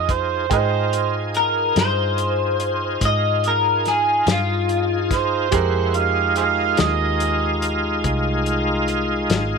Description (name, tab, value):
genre	slow blues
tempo	48 BPM (dotted quarters)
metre	12/8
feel	straight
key	F minor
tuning	A4 = 440 Hz
part	overdriven harmonica	second line	0.0-7.6 s	Ab4 to F5	-22 LUFS	right 13 dB	none
part	clear concert grand piano	accompaniment	0.0-9.6 s	F4 to G5	-28 LUFS	right 14 dB	none
part	bright tonewheel organ	sustained chords	0.0-9.6 s	Ab3 to Gb5	-24 LUFS	left 1 dB	slow rotary speaker, overdrive, chorus vibrato
part	vintage muted fingered electric bass	bass	0.0-9.6 s	Ab1 to Ab2	-25 LUFS	equal	none
part	warm soul drum kit	drums	0.1-9.5 s	hi-hat, kick drum, snare drum	-22 LUFS	left 4 dB	none
part	electric guitar at the edge of break-up	melody	1.4-5.1 s	F4 to Eb5	-19 LUFS	left 2 dB	analog chorus
room	light reverb, small room ambience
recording	1960s-style stereo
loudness	-17 LUFS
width	side -5 dB against mid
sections	0.0-9.6 A section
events	none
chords	0.0 Fm9